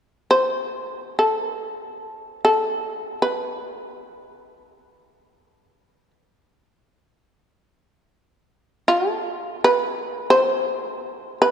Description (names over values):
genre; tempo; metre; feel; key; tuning
japanese traditional, Japanese chamber music; free time; none; none; unclear; A4 = 439 Hz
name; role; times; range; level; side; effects
shamisen; solo; 0.3-11.5 s; A4 to C5; -20 LUFS; equal; none
room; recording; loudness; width
wet church reverb, RT60 3.3 s; none; -20 LUFS; side -8 dB against mid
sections
0.0-11.5 A section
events
none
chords
none